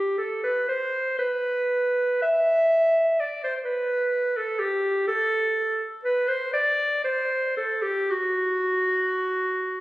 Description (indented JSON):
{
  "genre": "classical, baroque-style fantasia for unaccompanied clarinet",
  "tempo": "57-64 BPM",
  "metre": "3/4",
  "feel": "rubato",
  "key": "unclear",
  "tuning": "A4 = 440 Hz",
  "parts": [
    { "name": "bright clarinet", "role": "solo", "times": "0.0-9.8 s", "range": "F#4 to E5", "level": "-22 LUFS", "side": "equal", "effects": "none" }
  ],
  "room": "moderate concert hall reverb, RT60 2.0 s",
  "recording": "recorded on a phone in the room, studio reverb",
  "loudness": "-22 LUFS",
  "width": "side -17 dB against mid",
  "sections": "0.0-9.8 A section",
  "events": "none",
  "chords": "none"
}